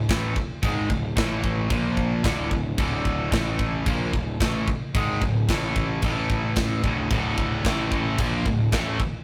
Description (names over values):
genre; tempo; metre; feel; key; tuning
heavy metal; 111 BPM; 4/4; straight; D minor; A4 = 440 Hz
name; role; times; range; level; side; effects
crunchy overdriven guitar; riff; 0.0-9.0 s; D2 to Bb3; -30 LUFS; equal; none
high-gain distorted guitar; riff; 0.0-9.0 s; D2 to Bb3; -35 LUFS; equal; none
fuzz picked electric bass; bass; 0.0-9.0 s; D1 to Bb1; -31 LUFS; equal; overdrive
tight metal drum kit; drums; 0.1-9.1 s; crash cymbal, kick drum, snare drum; -28 LUFS; equal; none
high-gain distorted guitar; riff; 7.1-9.0 s; D2 to Bb3; -32 LUFS; equal; distortion
room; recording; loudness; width
moderate small room reverb, RT60 0.5 s; rough rehearsal-room recording, tube saturation; -24 LUFS; mono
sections
0.0-9.2 A section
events
none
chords
0.0 D5; 1.2 A5; 1.7 Bb5; 2.2 D5; 3.3 A5; 3.9 Dm; 5.5 A5; 6.8 D5; 7.6 A5; 8.2 Dm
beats
0.09 | 0.62 1.17 1.71 2.25 | 2.79 3.33 3.86 4.40 | 4.94 5.48 6.02 6.56 | 7.10 7.64 8.18 8.72